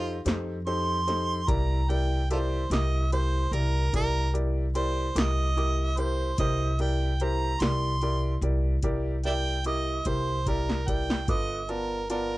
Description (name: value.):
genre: slow blues.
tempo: 49 BPM (dotted quarters).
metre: 12/8.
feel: straight.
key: C mixolydian.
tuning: A4 = 441 Hz.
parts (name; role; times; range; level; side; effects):
warm harmonica; second line; 0.0-12.4 s; F4 to C6; -31 LUFS; right 3 dB; none.
bright upright piano; accompaniment; 0.0-12.4 s; B3 to D6; -32 LUFS; left 1 dB; none.
upright bass; bass; 0.0-12.4 s; G1 to F2; -28 LUFS; equal; none.
electro analog drum machine; drums; 0.3-12.3 s; hi-hat, kick drum, snare drum; -30 LUFS; equal; none.
room: little or no reverb.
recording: dry, close 1970s-style studio recording.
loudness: -25 LUFS.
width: side -18 dB against mid.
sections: 0.0-12.4 A section.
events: harmonica solo 0.0-12.4; drum fill 10.1-11.3.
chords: 0.0 F9; 1.5 C9; 11.3 G9.